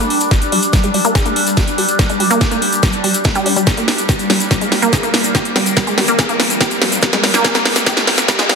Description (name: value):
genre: psychedelic trance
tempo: 143 BPM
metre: 4/4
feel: straight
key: G phrygian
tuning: A4 = 441 Hz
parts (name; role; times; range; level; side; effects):
- overtone-sweeping drone; sustained chords; 0.0-8.6 s; G3 to D4; -19 LUFS; equal; chorus, built-in reverb, phaser, sidechain pumping
- wide unison pluck; riff; 0.0-8.6 s; G3 to Ab4; -19 LUFS; moving between left 3 dB and right 3 dB; auto-pan, sidechain pumping, ping-pong delay
- drum and bass drum kit; drums; 0.0-8.6 s; hi-hat, snare drum; -16 LUFS; equal; soft clipping on snare
- egg shaker; percussion; 0.0-8.5 s; none; -24 LUFS; left 4 dB; none
- electronic kick drum; drums; 0.3-8.4 s; none; -17 LUFS; equal; none
- riser; sound effects; 5.1-8.6 s; none; -27 LUFS; equal; none
room: wet digital room reverb, RT60 1.4 s, digital ambience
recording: dense, heavily limited modern master, high-pass filter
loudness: -12 LUFS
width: side -5 dB against mid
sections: 0.0-8.6 A section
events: build-up 0.0-8.6; drum fill 0.0-8.6; filter sweep on synth arpeggio sound 0.0-8.6; filter sweep 0.0-8.6; riser 5.1-8.6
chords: 0.0 G5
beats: | 0.31 0.73 1.15 1.57 | 1.99 2.41 2.83 3.25 | 3.67 4.09 4.51 4.93 | 5.35 5.77 6.19 6.61 | 7.03 7.45 7.87 8.29